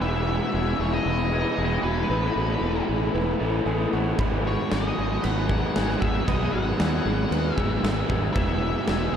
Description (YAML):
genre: rock, shoegaze and dream pop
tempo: 115 BPM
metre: 4/4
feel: straight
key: unclear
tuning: A4 = 442 Hz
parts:
  - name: octave-fuzz lead guitar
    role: melody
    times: 0.0-9.2 s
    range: B4 to F#5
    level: -32 LUFS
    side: left 2 dB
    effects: distortion, ping-pong delay
  - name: string machine, cellos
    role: sustained chords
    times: 0.0-9.2 s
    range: B2 to A4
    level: -33 LUFS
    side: left 2 dB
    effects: none
  - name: direct-recorded clean electric guitar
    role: arpeggios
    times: 0.0-9.2 s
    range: F#4 to B4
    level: -34 LUFS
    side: right 4 dB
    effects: analog chorus, ping-pong delay
  - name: raw garage guitar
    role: riff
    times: 0.0-9.2 s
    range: E3 to A4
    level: -30 LUFS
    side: left 8 dB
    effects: overdrive, lush chorus
  - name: raw garage guitar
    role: riff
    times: 0.0-9.2 s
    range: E3 to A4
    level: -29 LUFS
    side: right 5 dB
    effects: overdrive, reverse reverb
  - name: fuzz fingered electric bass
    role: bass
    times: 0.0-9.2 s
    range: E1 to D#2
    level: -27 LUFS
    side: equal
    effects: overdrive
  - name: huge arena drum kit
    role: drums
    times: 4.2-9.0 s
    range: crash cymbal, kick drum, snare drum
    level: -28 LUFS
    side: equal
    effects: none
room: wet huge ambient reverb, RT60 7.8 s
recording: dreamy mix soaked in reverb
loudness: -22 LUFS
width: side -8 dB against mid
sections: 0.0-9.2 A section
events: none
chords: 0.0 E; 2.1 Asus2; 4.2 G#m7; 8.4 E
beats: | 0.01 0.54 1.06 1.58 | 2.10 2.63 3.15 3.67 | 4.19 4.71 5.24 5.76 | 6.28 6.80 7.32 7.84 | 8.37 8.89